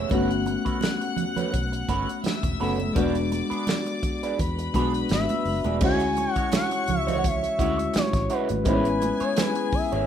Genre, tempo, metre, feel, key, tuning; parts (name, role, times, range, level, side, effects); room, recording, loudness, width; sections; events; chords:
lush 1970s-style soul; 84 BPM; 4/4; swing 54% on 16ths; A4 = 440 Hz
dark studio string section; second line; 0.0-10.1 s; G#4 to F#6; -33 LUFS; left 3 dB
tine electric piano; accompaniment; 0.0-10.1 s; G#3 to A4; -27 LUFS; left 3 dB; lush chorus
electric guitar through a small old amp; riff; 0.0-10.1 s; G#3 to C#5; -32 LUFS; right 8 dB; wah
vintage muted fingered electric bass; bass; 0.0-10.1 s; E1 to E2; -30 LUFS; equal
modern studio drum kit; drums; 0.1-10.1 s; crash cymbal, hi-hat, kick drum, snare drum; -28 LUFS; right 1 dB
congas; percussion; 0.1-9.6 s; -33 LUFS; right 8 dB
expressive synth lead; melody; 5.1-10.1 s; B4 to G#5; -27 LUFS; left 2 dB; chorus
group handclap; percussion; 6.5-9.6 s; barely audible
light reverb, small room ambience; rough home demo mix; -22 LUFS; side -9 dB against mid
0.0-5.8 A section; 5.8-10.1 B section
0.1 Gmaj9#11; 3.0 E7; 5.8 Dmaj9#11; 8.7 Amaj9